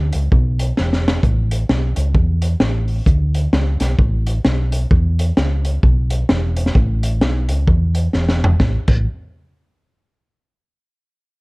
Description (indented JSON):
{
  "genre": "ska",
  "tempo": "130 BPM",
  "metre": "4/4",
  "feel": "swing 61% on 8ths",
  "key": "A major",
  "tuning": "A4 = 441 Hz",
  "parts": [
    { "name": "hollow-body short-scale fingered electric bass", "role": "bass", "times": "0.0-9.0 s", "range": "E1 to E2", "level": "-17 LUFS", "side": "equal", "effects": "none" },
    { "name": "crunchy breakbeat drum kit", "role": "drums", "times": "0.1-9.0 s", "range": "crash cymbal, hi-hat, kick drum, snare drum, toms", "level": "-17 LUFS", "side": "equal", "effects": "none" }
  ],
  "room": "little or no reverb",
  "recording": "dark, warm production",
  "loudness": "-14 LUFS",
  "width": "side -26 dB against mid",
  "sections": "0.0-8.6 A section; 8.6-10.4 B section",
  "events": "drum fill 0.8-1.2, 8.1-8.6",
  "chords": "none",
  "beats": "0.32 0.78 | 1.24 1.69 2.15 2.61 | 3.07 3.53 3.99 4.45 | 4.91 5.37 5.83 6.29 | 6.75 7.21 7.68 8.14 | 8.60"
}